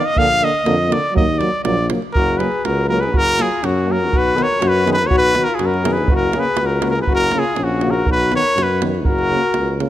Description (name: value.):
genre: balkan folk, Balkan brass band.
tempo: 122 BPM.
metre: 2/4.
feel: straight.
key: F# major.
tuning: A4 = 440 Hz.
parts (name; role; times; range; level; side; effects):
warm trumpet; melody; 0.0-9.8 s; F#4 to F5; -18 LUFS; equal; none.
warm euphonium; accompaniment; 0.0-9.9 s; C#3 to Gb3; -26 LUFS; right 5 dB; none.
mellow trombone; accompaniment; 0.2-9.9 s; Bb3 to B3; -27 LUFS; left 5 dB; none.
warm tuba; bass; 0.2-9.8 s; F#1 to F#2; -21 LUFS; equal; none.
davul; percussion; 0.2-9.9 s; none; -22 LUFS; right 2 dB; none.
warm flugelhorn; second line; 2.2-9.8 s; C#4 to A#4; -22 LUFS; left 4 dB; none.
room: light reverb.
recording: close, detailed microphones.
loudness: -14 LUFS.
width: side -13 dB against mid.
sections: 0.0-2.1 A section; 2.1-9.9 B section.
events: trumpet solo 0.0-2.1.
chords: 0.2 Bb; 1.2 Ebm; 2.1 F#; 4.1 B; 6.1 F#; 8.1 B; 9.1 F#.